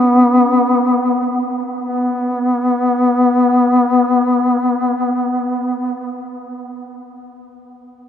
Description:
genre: caucasian folk, Caucasian lament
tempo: free time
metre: none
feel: none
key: unclear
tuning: A4 = 440 Hz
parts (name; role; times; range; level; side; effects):
- dark duduk; solo; 0.0-6.3 s; B3; -13 LUFS; left 1 dB; none
room: wet cathedral reverb, RT60 6.2 s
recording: in a vast, echoing space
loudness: -13 LUFS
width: side -9 dB against mid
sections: 0.0-1.8 A section; 1.8-5.5 B section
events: none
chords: none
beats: free time

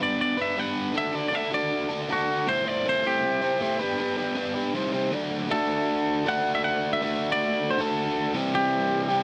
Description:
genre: rock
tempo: 158 BPM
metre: 4/4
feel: straight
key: unclear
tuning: A4 = 444 Hz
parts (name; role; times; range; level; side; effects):
- twangy electric guitar; melody; 0.0-9.2 s; F#4 to F#5; -29 LUFS; equal; slapback echo
- biting overdriven guitar; riff; 0.0-9.2 s; A2 to D5; -28 LUFS; equal; none
room: little or no reverb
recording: dry, close 1970s-style studio recording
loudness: -26 LUFS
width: mono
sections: 0.0-5.5 A section; 5.5-9.2 B section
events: none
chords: 0.0 G; 1.0 D; 2.5 Am7; 3.8 G/B; 4.8 Cm; 5.1 D; 8.3 C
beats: 0.19 0.57 | 0.95 1.33 1.71 2.10 | 2.48 2.86 3.24 3.62 | 4.00 4.38 4.75 5.13 | 5.51 5.89 6.27 6.64 | 7.02 7.40 7.77 8.15 | 8.53 8.90

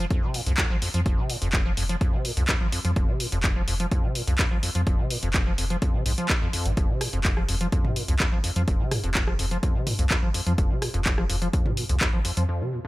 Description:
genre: acid house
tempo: 126 BPM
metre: 4/4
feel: straight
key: F minor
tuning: A4 = 441 Hz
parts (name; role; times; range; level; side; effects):
- acid bass, square; riff; 0.0-12.9 s; Eb2 to F3; -29 LUFS; equal; overdrive, lush chorus, sidechain pumping, digital delay
- warm sub bass; bass; 0.0-12.5 s; F1 to F2; -27 LUFS; equal; sidechain pumping
- electronic kick drum; drums; 0.1-12.1 s; none; -25 LUFS; equal; none
- punchy analog drum machine; drums; 0.1-12.5 s; handclaps, hi-hat, rim click, toms; -28 LUFS; equal; none
room: little or no reverb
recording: none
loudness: -22 LUFS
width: side -18 dB against mid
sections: 0.0-12.9 A section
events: break 12.5-12.9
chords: 0.0 F5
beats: 0.10 0.58 | 1.06 1.53 2.01 2.49 | 2.96 3.44 3.92 4.39 | 4.87 5.34 5.82 6.30 | 6.77 7.25 7.72 8.20 | 8.68 9.15 9.63 10.11 | 10.58 11.06 11.53 12.01 | 12.49

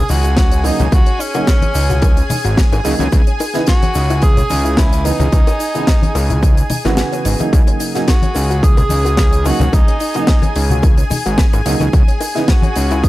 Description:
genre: nu-disco, nu disco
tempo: 109 BPM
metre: 4/4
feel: swing 54% on 16ths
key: unclear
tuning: A4 = 440 Hz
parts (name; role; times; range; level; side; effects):
- clear tenor saxophone; melody; 0.0-13.1 s; C#4 to G#4; -22 LUFS; right 1 dB; analog delay
- lush unison pad; sustained chords; 0.0-13.1 s; G#4 to G#5; -25 LUFS; left 1 dB; chorus, sidechain pumping
- soft round pluck; arpeggios; 0.0-13.1 s; A#3 to F#4; -26 LUFS; left 3 dB; chorus, sidechain pumping, analog delay
- fat analog bass; bass; 0.0-13.1 s; G#1 to C#2; -16 LUFS; equal; sidechain pumping
- tight funk drum kit; drums; 0.1-13.1 s; hi-hat, shaker, snare drum; -22 LUFS; left 1 dB; studio ambience
- cabasa, congas and bongos; percussion; 0.1-13.1 s; none; -22 LUFS; left 2 dB; none
- electronic kick drum; drums; 0.4-13.1 s; none; -12 LUFS; equal; overdrive, studio ambience
- warm concert grand piano; accompaniment; 0.6-12.4 s; C#3 to F#4; -21 LUFS; right 3 dB; sidechain pumping
room: small room ambience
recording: dry, gritty hardware recording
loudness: -12 LUFS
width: side -17 dB against mid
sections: 0.0-13.1 A section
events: break 7.0-7.5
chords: 0.0 D#m7/C#; 3.1 C#m9; 7.5 D#m7/C#; 11.9 C#m9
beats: 0.37 | 0.92 1.47 2.02 2.58 | 3.12 3.68 4.23 4.78 | 5.33 5.88 6.43 6.98 | 7.53 8.08 8.63 9.18 | 9.73 10.28 10.83 11.38 | 11.93 12.48 13.03

